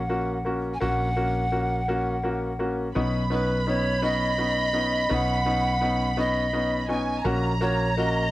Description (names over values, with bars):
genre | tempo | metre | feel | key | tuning
six-eight pop ballad | 56 BPM (dotted quarters) | 6/8 | straight | unclear | A4 = 440 Hz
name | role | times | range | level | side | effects
bright polished pan flute | melody | 0.0-8.3 s | B4 to Ab5 | -28 LUFS | right 1 dB | cassette tape, analog delay
mellow fretless electric bass | bass | 0.0-8.3 s | Bb1 to B1 | -28 LUFS | equal | wide subtle chorus
clear grand piano | accompaniment | 0.1-8.2 s | Bb3 to Gb4 | -27 LUFS | left 1 dB | cassette tape
warm symphonic violin section | second line | 3.0-8.3 s | Ab5 to B5 | -30 LUFS | right 2 dB | cassette tape
room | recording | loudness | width
light reverb | home recording on cassette | -22 LUFS | side -16 dB against mid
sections
0.0-3.0 A section; 3.0-8.3 B section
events
none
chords
0.0 Gb/Bb; 3.0 Badd9; 7.3 Gb/Bb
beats
| 0.81 1.89 | 2.96 4.03 | 5.11 6.18 | 7.25